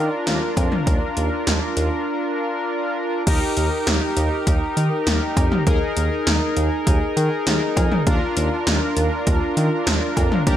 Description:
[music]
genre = synth-pop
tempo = 100 BPM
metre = 4/4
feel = straight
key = unclear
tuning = A4 = 438 Hz
[part]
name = analog synth brass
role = accompaniment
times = 0.0-10.6 s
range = D4 to Bb4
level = -22 LUFS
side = equal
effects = chorus
[part]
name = smooth synth bass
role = bass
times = 0.0-10.6 s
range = Eb2 to Eb3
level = -22 LUFS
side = equal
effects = none
[part]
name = 80s electronic pad drums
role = drums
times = 0.3-10.6 s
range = cowbell, crash cymbal, hi-hat, kick drum, snare drum, toms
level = -21 LUFS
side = equal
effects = gated reverb on snare and toms
[sound]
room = light reverb, digital ambience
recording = none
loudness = -18 LUFS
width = side -11 dB against mid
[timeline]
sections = 0.0-3.3 A section; 3.3-10.6 A section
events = break 2.1-3.3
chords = 0.0 Bb/Eb; 3.3 Eb; 5.7 Absus2/Eb; 8.1 Bb/Eb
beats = 0.27 | 0.87 1.47 2.07 2.67 | 3.27 3.87 4.47 5.07 | 5.67 6.27 6.87 7.47 | 8.07 8.67 9.27 9.87 | 10.47

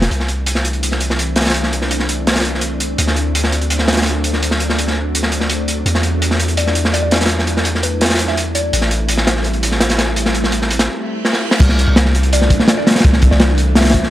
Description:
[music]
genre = drum and bass, jungle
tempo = 167 BPM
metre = 4/4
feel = straight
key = unclear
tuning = A4 = 441 Hz
[part]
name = long sustained 808-style bass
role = bass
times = 0.0-14.0 s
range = A1 to E2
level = -18 LUFS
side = equal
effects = none
[part]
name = crunchy breakbeat drum kit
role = drums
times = 0.0-14.1 s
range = crash cymbal, hi-hat, kick drum, snare drum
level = -15 LUFS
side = equal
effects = high-pass filter on kick, high-pass filter on hats, high-pass filter on cymbals, high-pass filter on snare, high-pass filter on room
[part]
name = soft string machine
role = sustained chords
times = 0.1-14.1 s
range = E3 to E4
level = -23 LUFS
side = equal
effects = ensemble chorus, vintage 12-bit sampler grit
[part]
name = mallet-like synth pluck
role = melody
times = 6.6-8.8, 12.3-14.0 s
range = B4 to E5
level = -23 LUFS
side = left 2 dB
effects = chorus, phaser, dub echo
[part]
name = reverse cymbal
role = sound effects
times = 11.0-11.6 s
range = none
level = -29 LUFS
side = right 5 dB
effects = none
[sound]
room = light reverb, studio reverb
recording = dry, gritty hardware recording, transformer saturation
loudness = -13 LUFS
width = side -14 dB against mid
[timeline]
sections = 0.1-11.6 A section; 11.6-14.1 B section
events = reverse cymbal 11.0-11.6; drum fill 11.2-11.6; drop 11.6-14.1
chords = 0.1 C69; 3.0 D7; 5.9 E9sus4; 8.7 Am7; 11.6 C69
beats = | 0.11 0.47 0.83 1.19 | 1.55 1.91 2.27 2.62 | 2.98 3.34 3.70 4.06 | 4.42 4.78 5.14 5.50 | 5.86 6.22 6.58 6.94 | 7.30 7.66 8.01 8.37 | 8.73 9.09 9.45 9.81 | 10.17 10.53 10.89 11.25 | 11.61 11.97 12.33 12.69 | 13.04 13.40 13.76

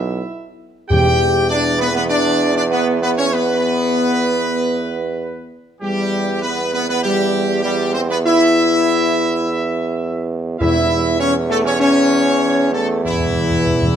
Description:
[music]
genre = classical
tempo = 99 BPM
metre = 4/4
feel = straight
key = unclear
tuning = A4 = 442 Hz
[part]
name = bright trumpet section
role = melody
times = 0.0-14.0 s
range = E4 to G5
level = -21 LUFS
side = equal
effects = none
[part]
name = dark French horn section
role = sustained chords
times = 0.0-14.0 s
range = E3 to G4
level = -20 LUFS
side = left 6 dB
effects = none
[part]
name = warm trombone section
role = sustained chords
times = 0.0-14.0 s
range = E3 to G4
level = -21 LUFS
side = right 4 dB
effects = none
[part]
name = clear tuba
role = bass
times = 0.0-14.0 s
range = B1 to E2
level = -20 LUFS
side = right 3 dB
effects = none
[part]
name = timpani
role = percussion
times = 0.9-1.8, 10.6-14.0 s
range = E2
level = -21 LUFS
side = left 1 dB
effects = none
[sound]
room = moderate recital hall reverb, RT60 1.6 s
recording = none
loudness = -14 LUFS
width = side -9 dB against mid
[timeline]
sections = 0.0-14.0 A section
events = timpani fill 13.0-14.0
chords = 0.0 E5; 0.9 Em; 13.0 N.C.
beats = 0.31 | 0.91 1.50 2.10 2.71 | 3.33 3.95 4.58 5.20 | 5.83 6.44 7.04 7.63 | 8.25 8.84 9.43 10.02 | 10.61 11.21 11.81 12.43 | 13.05 13.67

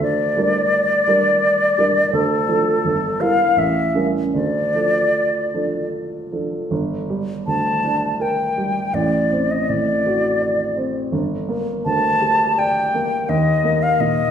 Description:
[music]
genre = classical, romantic duo for flute and grand piano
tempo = 75-86 BPM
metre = 3/4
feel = rubato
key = D minor, G minor from 6.7 s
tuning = A4 = 443 Hz
[part]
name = concert flute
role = melody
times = 0.0-14.3 s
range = A4 to A5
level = -18 LUFS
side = left 2 dB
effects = none
[part]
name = dark baby grand piano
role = accompaniment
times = 0.0-14.3 s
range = G1 to D5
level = -21 LUFS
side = right 2 dB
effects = none
[sound]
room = wet recital hall reverb, RT60 1.3 s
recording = heard from further back in the room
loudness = -16 LUFS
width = side -8 dB against mid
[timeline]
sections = 0.0-6.7 A section; 6.7-14.3 B section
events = none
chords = 0.0 Gm/D; 2.1 Dm; 2.8 Edim/G; 3.6 A7b9; 4.3 Dm; 6.7 Gm; 8.9 D7/A; 11.1 Gm; 13.3 Eb5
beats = | 0.01 0.73 1.44 | 2.14 2.85 3.57 | 4.34 5.14 5.92 | 6.71 7.47 8.21 | 8.94 9.69 10.42 | 11.13 11.85 12.58 | 13.30 14.00

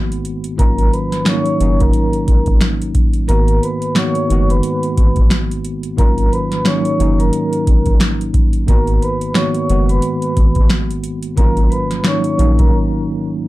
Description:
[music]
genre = hip hop, boom-bap hip-hop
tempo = 89 BPM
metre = 4/4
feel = swing 58% on 16ths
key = G# dorian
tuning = A4 = 444 Hz
[part]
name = mellow tine electric piano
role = accompaniment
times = 0.0-13.5 s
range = G#2 to F#4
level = -19 LUFS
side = equal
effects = medium stereo tremolo, high-pass filter, low-pass filter
[part]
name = booming analog drum machine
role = drums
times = 0.1-12.7 s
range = hi-hat, kick drum, snare drum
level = -16 LUFS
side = equal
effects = none
[part]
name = vibraphone with soft mallets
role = melody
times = 0.6-12.7 s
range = A#4 to C#6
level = -22 LUFS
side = equal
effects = high-pass filter, low-pass filter, ping-pong delay
[part]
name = soft dub sub bass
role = bass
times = 0.6-12.7 s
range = F#1 to A#1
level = -15 LUFS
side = equal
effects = none
[sound]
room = light reverb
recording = none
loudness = -13 LUFS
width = side -17 dB against mid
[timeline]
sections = 0.0-13.5 A section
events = kick muted 3.3-4.6; break 12.7-13.5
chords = 0.0 G#m9; 0.6 D#m9; 3.3 G#m9; 6.0 D#m9; 8.7 G#m9; 11.4 D#m9/G#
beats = | 0.59 1.26 1.94 2.61 | 3.29 3.96 4.63 5.31 | 5.98 6.66 7.33 8.00 | 8.68 9.35 10.03 10.70 | 11.38 12.05 12.72 13.40

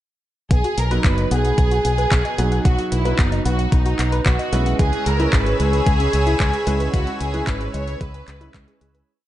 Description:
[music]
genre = italo disco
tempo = 112 BPM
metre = 4/4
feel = straight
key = B major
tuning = A4 = 440 Hz
[part]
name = warm studio violin section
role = melody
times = 0.5-8.8 s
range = D#4 to C#5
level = -24 LUFS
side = right 1 dB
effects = tape echo
[part]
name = analog pluck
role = arpeggios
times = 0.5-9.0 s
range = G#3 to F#5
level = -28 LUFS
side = left 2 dB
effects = chorus, tape echo
[part]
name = fingered electric bass with an envelope filter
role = bass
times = 0.5-9.0 s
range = F#1 to C#2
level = -21 LUFS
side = equal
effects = none
[part]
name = electronic kick drum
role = drums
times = 0.5-8.7 s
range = none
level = -18 LUFS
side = equal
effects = overdrive, studio reverb
[part]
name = house drum kit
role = drums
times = 0.5-9.1 s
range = handclaps, hi-hat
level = -28 LUFS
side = left 1 dB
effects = studio reverb
[part]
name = clear baby grand piano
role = stabs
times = 0.9-9.1 s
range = F#3 to B4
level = -27 LUFS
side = right 3 dB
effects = none
[part]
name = lush unison pad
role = sustained chords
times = 4.8-9.0 s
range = C#5 to E6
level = -30 LUFS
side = equal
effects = chorus
[sound]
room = light reverb, digital ambience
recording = dark, warm production, nothing above 10.5 kHz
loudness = -16 LUFS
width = side -14 dB against mid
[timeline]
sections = 0.5-9.1 verse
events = fade-out 6.2-9.1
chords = 0.5 B; 4.8 C#m7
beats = | 0.51 1.04 1.58 2.12 | 2.65 3.19 3.72 4.26 | 4.79 5.33 5.87 6.40 | 6.94 7.47 8.01 8.54

